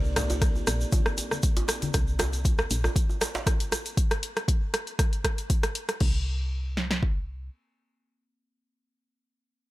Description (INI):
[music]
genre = afro house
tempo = 118 BPM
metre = 4/4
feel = swing 53% on 16ths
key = C minor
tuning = A4 = 440 Hz
[part]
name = dark analog pad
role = sustained chords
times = 0.0-1.9 s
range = C4 to D5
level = -41 LUFS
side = equal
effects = chorus, sidechain pumping
[part]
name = woody FM bass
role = bass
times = 0.0-2.9, 6.0-7.5 s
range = Bb1 to C2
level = -29 LUFS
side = equal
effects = sidechain pumping
[part]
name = egg shaker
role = percussion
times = 0.0-4.0 s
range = none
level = -37 LUFS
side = right 3 dB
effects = none
[part]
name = deep house drum kit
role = drums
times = 0.2-6.1 s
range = crash cymbal, hi-hat, rim click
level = -30 LUFS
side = equal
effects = overdrive
[part]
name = congas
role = percussion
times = 0.2-1.9 s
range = none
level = -36 LUFS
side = left 4 dB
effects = none
[part]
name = djembe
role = percussion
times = 0.2-3.8 s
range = none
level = -35 LUFS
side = right 2 dB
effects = none
[part]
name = deep house drum kit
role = drums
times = 0.4-7.2 s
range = kick drum, snare drum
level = -25 LUFS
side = equal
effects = overdrive
[sound]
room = studio ambience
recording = none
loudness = -24 LUFS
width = side -18 dB against mid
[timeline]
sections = 0.0-6.0 A section; 6.0-9.7 B section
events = drop 0.0-6.0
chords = 0.0 Cmadd9; 1.9 N.C.